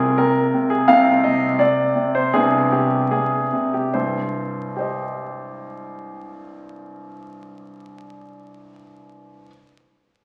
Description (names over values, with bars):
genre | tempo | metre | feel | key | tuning
classical-period piano sonatina | 71-87 BPM | 2/4 | rubato | C minor | A4 = 440 Hz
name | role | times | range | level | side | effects
clear concert grand piano | solo | 0.0-9.5 s | C2 to F5 | -20 LUFS | equal | none
room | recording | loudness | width
wet recital hall reverb, RT60 1.8 s | very old 78 rpm record, vinyl crackle | -19 LUFS | mono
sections
0.0-3.9 A section; 3.9-7.2 B section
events
slowing down 0.2-3.9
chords
0.0 F5/C; 0.9 Cm; 2.3 Gadd11/C; 3.9 Cm